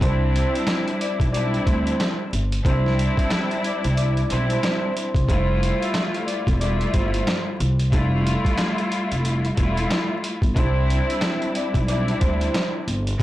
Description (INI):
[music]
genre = hip hop, boom-bap hip-hop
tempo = 91 BPM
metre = 4/4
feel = swing 59% on 16ths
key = C major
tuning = A4 = 440 Hz
[part]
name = vibraphone with soft mallets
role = melody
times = 0.0-13.2 s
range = C5 to E6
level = -29 LUFS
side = right 1 dB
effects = high-pass filter, low-pass filter, digital delay
[part]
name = rich studio string section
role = accompaniment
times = 0.0-13.2 s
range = G3 to F4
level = -25 LUFS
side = left 1 dB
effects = high-pass filter, low-pass filter
[part]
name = upright bass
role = bass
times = 0.0-13.2 s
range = E1 to D2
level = -22 LUFS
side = equal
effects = tube saturation
[part]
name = boom bap sampler-style drum kit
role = drums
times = 0.0-13.2 s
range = hi-hat, kick drum, snare drum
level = -24 LUFS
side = equal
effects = none
[sound]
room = light reverb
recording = blown-out, overdriven recording, vinyl crackle, overdrive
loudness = -19 LUFS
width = side -15 dB against mid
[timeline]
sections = 0.0-13.2 A section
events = none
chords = 0.0 Cadd9; 5.3 Fmaj9; 10.6 Cmaj9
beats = | 0.01 0.67 1.33 1.99 | 2.65 3.31 3.97 4.63 | 5.29 5.95 6.61 7.27 | 7.92 8.59 9.24 9.90 | 10.56 11.22 11.88 12.54 | 13.20